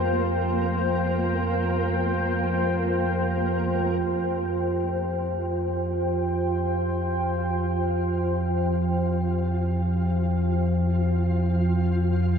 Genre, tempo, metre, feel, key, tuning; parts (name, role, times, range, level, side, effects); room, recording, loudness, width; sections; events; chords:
dark ambient drone; free time; A4 = 442 Hz
deep dark ambient pad; sustained chords; 0.0-12.4 s; F4 to G5; -27 LUFS; equal; chorus, built-in reverb
deep rumbling drone; drone; 0.0-12.4 s; F2 to F3; -25 LUFS; equal; built-in reverb
flickering grainy texture; texture; 0.0-12.4 s; Bb3 to F5; -33 LUFS; equal; built-in reverb
wet huge ambient reverb, RT60 8.4 s; -22 LUFS; side -7 dB against mid
0.0-4.0 A section; 4.0-12.4 A section
fade-in on synth texture 4.0-12.4
0.0 Fsus2